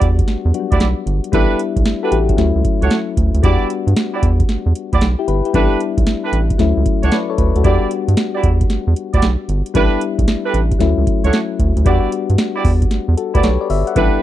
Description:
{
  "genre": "R&B, new jack swing",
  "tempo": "114 BPM",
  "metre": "4/4",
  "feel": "swing 66% on 16ths",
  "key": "E dorian",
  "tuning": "A4 = 440 Hz",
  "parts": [
    { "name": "soft electric-piano-like synth keys", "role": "accompaniment", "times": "0.0-14.2 s", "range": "F#3 to F#5", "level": "-20 LUFS", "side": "left 8 dB", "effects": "chorus" },
    { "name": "mellow horn section", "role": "stabs", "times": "0.0-14.2 s", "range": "D4 to D5", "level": "-20 LUFS", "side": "right 7 dB", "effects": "none" },
    { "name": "round analog bass", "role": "bass", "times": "0.0-14.1 s", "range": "G1 to G2", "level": "-15 LUFS", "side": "right 1 dB", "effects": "none" },
    { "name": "booming analog drum machine", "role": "drums", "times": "0.0-14.2 s", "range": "hi-hat, kick drum, snare drum", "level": "-17 LUFS", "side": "right 1 dB", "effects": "overdrive" }
  ],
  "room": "digital ambience",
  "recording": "dry, close 1970s-style studio recording",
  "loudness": "-14 LUFS",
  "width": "side -13 dB against mid",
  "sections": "0.0-14.2 A section",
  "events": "none",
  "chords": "0.0 Em9; 1.3 A9sus4; 2.4 Dmaj7; 3.4 Em9; 5.5 A9sus4; 6.6 Dmaj7; 7.6 Em9; 9.8 A9sus4; 10.8 Dmaj7; 11.9 Em9",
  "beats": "0.28 0.80 | 1.33 1.86 2.38 2.91 | 3.44 3.96 4.49 5.01 | 5.54 6.07 6.59 7.12 | 7.65 8.17 8.70 9.22 | 9.75 10.28 10.80 11.33 | 11.86 12.38 12.91 13.44 | 13.96"
}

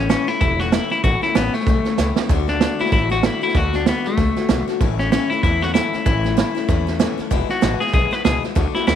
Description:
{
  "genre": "rockabilly",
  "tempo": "191 BPM",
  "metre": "4/4",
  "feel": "swing 59% on 8ths",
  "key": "A major",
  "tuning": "A4 = 440 Hz",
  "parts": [
    { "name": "clean electric guitar", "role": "melody", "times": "0.0-9.0 s", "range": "A3 to B4", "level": "-21 LUFS", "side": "left 4 dB", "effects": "tape echo" },
    { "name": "picked steel-string acoustic guitar", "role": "accompaniment", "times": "0.0-9.0 s", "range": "E2 to F#4", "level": "-25 LUFS", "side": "left 14 dB", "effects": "none" },
    { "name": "upright bass", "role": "bass", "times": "0.0-9.0 s", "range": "E1 to E2", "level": "-23 LUFS", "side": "equal", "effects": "none" },
    { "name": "vintage drum kit", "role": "drums", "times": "0.1-9.0 s", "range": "hi-hat, kick drum, snare drum", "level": "-20 LUFS", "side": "right 4 dB", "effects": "none" }
  ],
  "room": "light reverb",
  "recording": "1960s-style stereo",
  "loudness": "-16 LUFS",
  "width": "side -9 dB against mid",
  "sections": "0.0-9.0 A section",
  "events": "drum fill 2.0-2.3",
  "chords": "0.0 A; 2.3 D; 4.8 A; 7.3 E",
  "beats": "0.10 0.42 0.73 | 1.04 1.36 1.67 1.99 | 2.30 2.61 2.93 3.24 | 3.55 3.87 4.18 4.50 | 4.81 5.12 5.43 5.75 | 6.06 6.37 6.69 7.00 | 7.31 7.62 7.94 8.25 | 8.56 8.88"
}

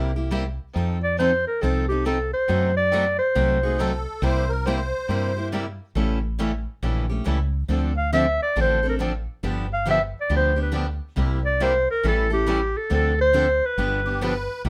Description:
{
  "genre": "acoustic string swing (jazz manouche)",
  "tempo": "138 BPM",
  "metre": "4/4",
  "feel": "swing 63% on 8ths",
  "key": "C mixolydian",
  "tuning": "A4 = 438 Hz",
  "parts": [
    { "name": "picked steel-string acoustic guitar", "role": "accompaniment", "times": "0.0-14.7 s", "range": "C3 to A4", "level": "-30 LUFS", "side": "equal", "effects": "none" },
    { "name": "picked swing-style acoustic guitar", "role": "accompaniment", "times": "0.0-14.7 s", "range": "C3 to A4", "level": "-35 LUFS", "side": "equal", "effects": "none" },
    { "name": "woody fretless electric bass", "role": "bass", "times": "0.0-14.7 s", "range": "G1 to G2", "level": "-27 LUFS", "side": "equal", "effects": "none" },
    { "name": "warm clarinet", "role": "melody", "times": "1.0-4.0, 8.0-14.2 s", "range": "G4 to F5", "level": "-24 LUFS", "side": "equal", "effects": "none" },
    { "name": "musette accordion", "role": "second line", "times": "3.6-5.5, 14.1-14.6 s", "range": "G4 to C5", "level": "-31 LUFS", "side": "equal", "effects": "none" }
  ],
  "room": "light reverb",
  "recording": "none",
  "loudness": "-23 LUFS",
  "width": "mono",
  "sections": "0.0-14.6 A section",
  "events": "none",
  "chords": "0.0 C7; 0.8 F7; 2.5 F#dim7; 4.2 C7; 6.0 A7; 7.7 Dm7; 9.4 G7; 11.2 C7; 12.0 A7; 12.9 Dm7; 13.8 G7",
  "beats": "0.32 | 0.75 1.19 1.62 2.05 | 2.49 2.92 3.35 3.79 | 4.22 4.66 5.09 5.53 | 5.96 6.39 6.83 7.26 | 7.70 8.13 8.56 9.00 | 9.43 9.87 10.30 10.73 | 11.17 11.60 12.04 12.47 | 12.90 13.34 13.77 14.21 | 14.64"
}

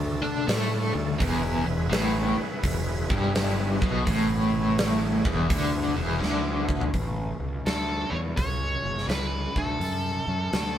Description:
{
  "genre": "blues rock power trio and southern rock",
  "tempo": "84 BPM",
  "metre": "4/4",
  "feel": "swing 65% on 8ths",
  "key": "E mixolydian",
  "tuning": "A4 = 439 Hz",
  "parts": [
    { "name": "overdriven tonewheel organ", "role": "sustained chords", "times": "0.0-6.9 s", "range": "A3 to B4", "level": "-35 LUFS", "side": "right 2 dB", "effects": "slow rotary speaker, chorus vibrato" },
    { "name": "overdriven electric guitar", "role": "riff", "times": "0.0-6.9 s", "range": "E2 to D4", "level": "-26 LUFS", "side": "equal", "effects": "tremolo" },
    { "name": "fuzz picked electric bass", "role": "bass", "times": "0.0-10.8 s", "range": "E1 to D3", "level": "-29 LUFS", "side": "equal", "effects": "overdrive" },
    { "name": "huge arena drum kit", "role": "drums", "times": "0.5-10.7 s", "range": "hi-hat, kick drum, snare drum, toms", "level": "-29 LUFS", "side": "equal", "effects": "none" },
    { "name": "octave-fuzz lead guitar", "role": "melody", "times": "7.7-10.8 s", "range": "A4 to C#5", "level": "-30 LUFS", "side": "equal", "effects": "distortion" }
  ],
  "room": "moderate studio reverb, RT60 0.7 s",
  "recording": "band playing live in one room",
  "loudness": "-23 LUFS",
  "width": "side -10 dB against mid",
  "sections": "0.0-6.9 A section; 6.9-10.8 B section",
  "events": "drum fill 6.2-6.9",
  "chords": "0.0 D5; 1.2 E; 6.9 A; 9.4 D",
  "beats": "0.47 | 1.19 1.91 2.63 3.35 | 4.06 4.78 5.50 6.22 | 6.93 7.65 8.37 9.09 | 9.81 10.53"
}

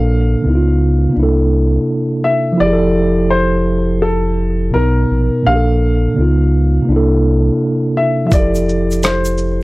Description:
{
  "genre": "lo-fi hip hop",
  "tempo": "84 BPM",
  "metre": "4/4",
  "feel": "swing 63% on 16ths",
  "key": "F major",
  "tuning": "A4 = 443 Hz",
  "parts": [
    { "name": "warm upright piano", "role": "melody", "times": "0.0-9.6 s", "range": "A4 to F5", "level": "-19 LUFS", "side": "left 2 dB", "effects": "none" },
    { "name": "mellow tine electric piano", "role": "accompaniment", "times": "0.0-9.6 s", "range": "Bb2 to A#4", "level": "-14 LUFS", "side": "right 1 dB", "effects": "medium stereo tremolo, cassette tape" },
    { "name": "sub bass with octave", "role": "bass", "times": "0.0-9.6 s", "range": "F1 to Db2", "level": "-16 LUFS", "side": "equal", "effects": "none" },
    { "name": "dusty soul sampler-style drum kit", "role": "drums", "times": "8.3-9.6 s", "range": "hi-hat, kick drum, rim click, shaker", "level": "-15 LUFS", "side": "equal", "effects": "none" },
    { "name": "tube shaker", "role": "percussion", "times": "8.3-9.4 s", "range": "none", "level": "-34 LUFS", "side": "right 2 dB", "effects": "none" }
  ],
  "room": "little or no reverb",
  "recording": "dry, gritty hardware recording",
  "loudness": "-12 LUFS",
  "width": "side -21 dB against mid",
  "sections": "0.0-9.6 A section",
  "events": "none",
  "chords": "0.5 Db9; 1.2 C13; 2.6 Fmaj9; 4.7 Bmaj7; 5.5 Bbmaj7; 6.2 Db9; 6.9 C13; 8.3 Fmaj9",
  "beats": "0.46 1.18 1.89 | 2.60 3.32 4.03 4.75 | 5.46 6.17 6.89 7.60 | 8.32 9.03"
}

